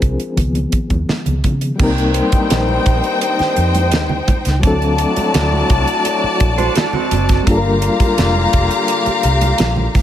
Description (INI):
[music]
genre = lush 1970s-style soul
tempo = 85 BPM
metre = 4/4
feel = straight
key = C dorian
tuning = A4 = 436 Hz
[part]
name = reed electric piano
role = accompaniment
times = 0.0-10.0 s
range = Eb3 to C5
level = -21 LUFS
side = left 2 dB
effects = fast tremolo
[part]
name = vintage muted fingered electric bass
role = bass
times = 0.0-9.9 s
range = F1 to Db3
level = -18 LUFS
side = equal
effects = none
[part]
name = damped 70s drum kit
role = drums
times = 0.0-10.0 s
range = crash cymbal, hi-hat, kick drum, snare drum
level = -18 LUFS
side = right 1 dB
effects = none
[part]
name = congas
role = percussion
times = 0.4-10.0 s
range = none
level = -26 LUFS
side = right 4 dB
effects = none
[part]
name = rich studio string section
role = second line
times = 1.8-10.0 s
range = Eb4 to Bb5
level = -19 LUFS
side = left 1 dB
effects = slapback echo
[part]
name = bright trombone section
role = stabs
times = 1.8-9.9 s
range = G2 to F4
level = -22 LUFS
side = left 8 dB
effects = none
[part]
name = electric guitar through a small old amp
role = riff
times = 6.6-7.4 s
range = C4 to C5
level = -20 LUFS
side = right 10 dB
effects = none
[sound]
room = light reverb, small room ambience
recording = none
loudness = -13 LUFS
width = side -11 dB against mid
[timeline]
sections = 0.0-1.8 A section; 1.8-10.0 B section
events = reed electric piano solo 0.0-1.8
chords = 0.4 Db9; 1.8 Cm7; 4.6 D7; 7.5 Gm7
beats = 0.37 1.08 | 1.79 2.50 3.21 3.92 | 4.63 5.34 6.05 6.76 | 7.47 8.18 8.89 9.60